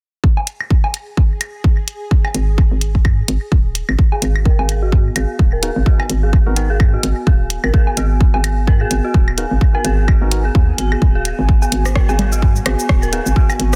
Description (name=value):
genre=minimal techno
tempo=128 BPM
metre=4/4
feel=swing 58% on 16ths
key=G# minor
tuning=A4 = 440 Hz
part: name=electronic kick drum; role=drums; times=0.2-13.5 s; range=none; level=-15 LUFS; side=equal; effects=none
part: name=swarming drone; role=texture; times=0.9-4.0 s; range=G#4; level=-38 LUFS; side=equal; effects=built-in reverb, sidechain pumping
part: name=electronic woodblock, claves, rim click and congas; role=percussion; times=0.4-13.8 s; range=none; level=-26 LUFS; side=equal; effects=overdrive, digital delay
part: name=house drum kit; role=drums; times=0.5-13.8 s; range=cabasa, hi-hat, rim click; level=-24 LUFS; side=equal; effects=soft clipping on snare
part: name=hollow knocking FM bass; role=bass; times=2.3-13.8 s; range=D#1 to G#2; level=-20 LUFS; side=equal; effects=tube saturation, sidechain pumping
part: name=airy breathy pad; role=texture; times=4.4-13.8 s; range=B3 to G#5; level=-29 LUFS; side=equal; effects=chorus, sidechain pumping
part: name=dark detuned synth bell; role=riff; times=4.1-13.8 s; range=F#4 to G#5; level=-28 LUFS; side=equal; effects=chorus, sidechain pumping, low-pass filter, digital delay
part: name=percussive organ stab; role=stabs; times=5.6-13.2 s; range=B3 to A#4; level=-31 LUFS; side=equal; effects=chorus, digital delay
room=little or no reverb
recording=dense, heavily limited modern master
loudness=-15 LUFS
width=mono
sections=0.2-4.0 A section; 4.0-13.8 B section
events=filter sweep on synth bell 4.0-13.8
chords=0.2 G#5; 4.0 G#m7